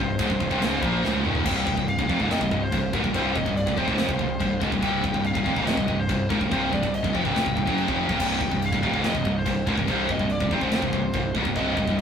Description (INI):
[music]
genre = heavy metal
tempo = 142 BPM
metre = 4/4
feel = straight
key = C minor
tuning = A4 = 443 Hz
[part]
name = high-gain lead guitar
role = melody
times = 0.0-12.0 s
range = Bb4 to G5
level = -30 LUFS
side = left 1 dB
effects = distortion
[part]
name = fuzz guitar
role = riff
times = 0.0-12.0 s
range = C2 to Bb3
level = -30 LUFS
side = equal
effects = distortion
[part]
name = scooped high-gain guitar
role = riff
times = 0.0-12.0 s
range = C2 to Bb3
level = -27 LUFS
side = left 5 dB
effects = distortion
[part]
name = scooped high-gain guitar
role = riff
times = 0.0-12.0 s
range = C2 to Bb3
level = -28 LUFS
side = right 5 dB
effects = distortion
[part]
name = fuzz picked electric bass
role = bass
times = 0.0-12.0 s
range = C1 to Bb1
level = -32 LUFS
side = equal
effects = overdrive
[part]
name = tight metal drum kit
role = drums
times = 0.2-12.0 s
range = china cymbal, crash cymbal, kick drum, snare drum, toms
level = -30 LUFS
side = right 1 dB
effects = none
[sound]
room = moderate studio reverb, RT60 0.5 s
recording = rough rehearsal-room recording, tube saturation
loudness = -21 LUFS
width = side -7 dB against mid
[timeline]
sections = 0.0-1.5 A section; 1.5-12.0 B section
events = drum fill 1.0-1.5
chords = 0.0 Cm; 1.5 C5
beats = 0.19 0.61 1.03 | 1.46 1.88 2.30 2.72 | 3.14 3.56 3.98 4.41 | 4.83 5.25 5.67 6.09 | 6.51 6.93 7.36 7.78 | 8.20 8.62 9.04 9.46 | 9.88 10.30 10.72 11.14 | 11.56 11.98